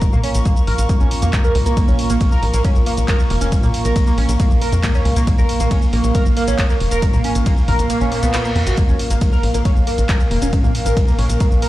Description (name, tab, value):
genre	driving peak-time techno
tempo	137 BPM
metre	4/4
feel	straight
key	Bb minor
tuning	A4 = 440 Hz
part	deep dark ambient pad	drone	0.0-11.7 s	Bb2 to Bb3	-25 LUFS	right 3 dB	chorus, built-in reverb, sidechain pumping
part	electronic kick drum	drums	0.0-11.5 s	none	-16 LUFS	equal	none
part	punchy analog drum machine	drums	0.0-11.7 s	handclaps, hi-hat, ride cymbal, shaker	-28 LUFS	equal	sidechain pumping on hats, sidechain pumping on cymbals, sidechain pumping on perc
part	airy breathy pad	texture	0.0-11.7 s	Bb4 to Eb6	-26 LUFS	equal	chorus, sidechain pumping
part	overdriven synth lead	riff	0.1-11.7 s	Bb3 to Bb4	-24 LUFS	equal	distortion, phaser, analog chorus, sidechain pumping, ping-pong delay
part	tight sequencer bass	bass	0.1-11.6 s	F1 to Bb2	-18 LUFS	equal	sidechain pumping
part	reverse cymbal	sound effects	8.1-8.8 s	none	-30 LUFS	right 1 dB	none
room	light reverb, digital ambience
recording	played on a big sound system in a bare room, large studio reverb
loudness	-14 LUFS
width	side -16 dB against mid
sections	0.0-11.7 A section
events	kick drops out 7.9-8.8; reverse cymbal 8.1-8.8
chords	0.0 Bbm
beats	| 0.02 0.46 0.89 1.33 | 1.77 2.21 2.65 3.08 | 3.52 3.96 4.40 4.83 | 5.27 5.71 6.15 6.59 | 7.02 7.46 7.90 8.34 | 8.78 9.21 9.65 10.09 | 10.53 10.97 11.40